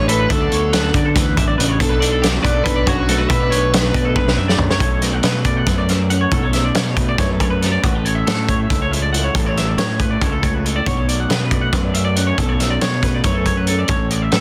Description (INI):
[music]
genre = math rock and midwest emo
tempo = 278 BPM (eighths)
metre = 7/8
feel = straight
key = B minor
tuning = A4 = 440 Hz
[part]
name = raw garage guitar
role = melody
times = 0.0-4.3 s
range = F#4 to D5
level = -23 LUFS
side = equal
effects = overdrive, slapback echo, plate reverb
[part]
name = electric guitar through a small old amp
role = accompaniment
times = 0.0-14.4 s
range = F#2 to B4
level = -27 LUFS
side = equal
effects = none
[part]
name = twelve-string electric guitar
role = arpeggios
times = 0.0-14.4 s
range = F#4 to F#5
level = -26 LUFS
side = equal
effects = subtle chorus, slapback echo, plate reverb
[part]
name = fuzz fingered electric bass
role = bass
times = 0.0-14.4 s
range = A1 to D3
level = -22 LUFS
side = equal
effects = overdrive
[part]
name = loose indie drum kit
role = drums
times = 0.1-14.4 s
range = hi-hat, kick drum, snare drum, toms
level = -21 LUFS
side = equal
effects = none
[sound]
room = light reverb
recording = dense, heavily limited modern master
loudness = -17 LUFS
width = mono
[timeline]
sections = 0.0-4.8 A section; 4.8-14.4 B section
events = drum fill 4.2-4.8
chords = 0.3 D6; 1.8 Bm7; 4.8 Bm9; 7.8 F#m7/A; 10.9 Bm9; 13.9 F#m7/A